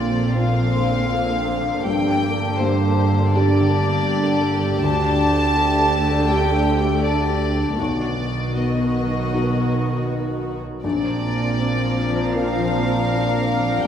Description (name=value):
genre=cinematic, emotional film score for orchestra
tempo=80 BPM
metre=4/4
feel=rubato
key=Bb major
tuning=A4 = 438 Hz
part: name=clear studio violin section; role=melody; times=0.0-13.9 s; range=C5 to A5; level=-25 LUFS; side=left 2 dB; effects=none
part: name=warm symphonic violin section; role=second line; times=0.0-13.9 s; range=C4 to Bb4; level=-25 LUFS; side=equal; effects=none
part: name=dark symphonic viola section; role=accompaniment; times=0.0-13.9 s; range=D3 to C4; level=-26 LUFS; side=right 2 dB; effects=none
part: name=felt-muted upright piano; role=accompaniment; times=0.0-13.9 s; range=Bb1 to Bb4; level=-26 LUFS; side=left 1 dB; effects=none
part: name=concert harp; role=arpeggios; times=0.0-13.9 s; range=G2 to D5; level=-28 LUFS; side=left 5 dB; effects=none
part: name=warm symphonic cello section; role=bass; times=0.0-13.9 s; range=D2 to B2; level=-26 LUFS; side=right 2 dB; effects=none
part: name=warm symphonic double bass section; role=bass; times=0.0-13.9 s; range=G1 to D2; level=-25 LUFS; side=right 2 dB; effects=none
room=wet recital hall reverb, RT60 1.6 s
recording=recorded in a church or concert hall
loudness=-18 LUFS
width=side -9 dB against mid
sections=0.0-13.9 A section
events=none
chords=0.0 Bbadd9; 1.9 Gm; 4.8 Dsus4; 7.8 B; 10.8 Bbadd9